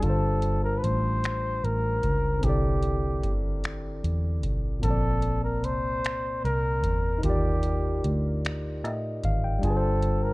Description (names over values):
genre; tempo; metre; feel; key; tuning
slow six-eight R&B; 50 BPM (dotted quarters); 6/8; straight; unclear; A4 = 439 Hz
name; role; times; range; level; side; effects
warm flugelhorn; melody; 0.0-10.3 s; G4 to C5; -31 LUFS; equal; none
barky tine electric piano; accompaniment; 0.0-10.3 s; Bb2 to A5; -32 LUFS; left 1 dB; overdrive
vintage muted fingered electric bass; bass; 0.0-10.3 s; G1 to A2; -28 LUFS; equal; tube saturation
booming analog drum machine; drums; 0.0-10.2 s; finger snaps, hi-hat, kick drum; -30 LUFS; equal; none
room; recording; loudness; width
digital ambience; worn, warbling old tape, cassette tape, warbly pitch drift; -24 LUFS; side -21 dB against mid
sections
0.0-10.3 A section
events
none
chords
0.0 G9sus4; 2.4 C69; 4.8 Bbmaj9; 7.2 Ebmaj7; 9.6 G9sus4